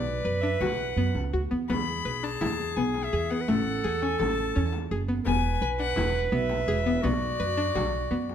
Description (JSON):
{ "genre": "contemporary instrumental, chamber music in an uneven meter", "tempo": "168 BPM", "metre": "5/4", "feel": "straight", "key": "unclear", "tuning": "A4 = 441 Hz", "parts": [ { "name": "rich violin", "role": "melody", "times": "0.0-8.3 s", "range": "D5 to B5", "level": "-32 LUFS", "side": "left 6 dB", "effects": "none" }, { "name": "clear clarinet", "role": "second line", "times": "0.0-8.3 s", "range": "F#4 to B4", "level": "-31 LUFS", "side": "right 2 dB", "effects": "none" }, { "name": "string-like resonator pluck", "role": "arpeggios", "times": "0.0-8.3 s", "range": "A3 to B4", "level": "-30 LUFS", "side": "left 2 dB", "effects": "chorus" }, { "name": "upright bass", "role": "bass", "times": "0.0-8.3 s", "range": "E1 to F#2", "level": "-30 LUFS", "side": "right 2 dB", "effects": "none" }, { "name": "frame drum", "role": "percussion", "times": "0.6-8.3 s", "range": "none", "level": "-37 LUFS", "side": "left 3 dB", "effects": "none" } ], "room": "moderate recital hall reverb, RT60 1.4 s", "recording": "none", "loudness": "-25 LUFS", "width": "side -9 dB against mid", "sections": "0.0-8.3 A section", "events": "none", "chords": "0.0 Bm; 1.7 E; 3.5 Amaj7; 5.3 E5; 7.0 Bm" }